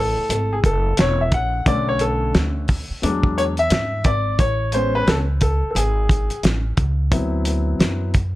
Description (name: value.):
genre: hip hop, jazz-hop.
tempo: 88 BPM.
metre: 4/4.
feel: swing 62% on 16ths.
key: unclear.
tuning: A4 = 439 Hz.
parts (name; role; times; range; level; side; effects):
dark baby grand piano; accompaniment; 0.0-8.1 s; D3 to F#5; -21 LUFS; left 2 dB; plate reverb.
upright bass; bass; 0.0-8.3 s; E1 to G#2; -22 LUFS; equal; none.
cloth-damped thuddy drum kit; drums; 0.3-8.3 s; hi-hat, kick drum, snare drum; -19 LUFS; equal; none.
room: light reverb.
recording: none.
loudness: -17 LUFS.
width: side -17 dB against mid.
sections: 0.0-8.4 A section.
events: grand piano solo 0.0-8.4.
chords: 0.0 F#m9; 1.7 Bm9; 3.0 E9; 4.4 Amaj7; 7.1 D13.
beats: 0.30 0.98 | 1.66 2.34 3.02 3.71 | 4.39 5.07 5.75 6.43 | 7.12 7.80.